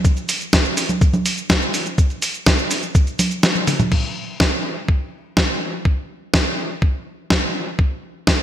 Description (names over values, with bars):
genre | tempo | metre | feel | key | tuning
italo disco | 124 BPM | 4/4 | straight | none | none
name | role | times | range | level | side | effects
dusty soul sampler-style drum kit | drums | 0.0-8.4 s | cabasa, congas, crash cymbal, hi-hat, snare drum, toms | -18 LUFS | equal | gated reverb
electronic kick drum | drums | 0.0-8.4 s | none | -17 LUFS | equal | none
room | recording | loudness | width
moderate lush hall reverb, RT60 1.6 s | bright 1980s-style digital production | -17 LUFS | side -11 dB against mid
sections
0.0-3.9 A section; 3.9-8.4 B section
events
kick drops out 3.4-3.9; drum fill 3.6-3.9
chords
none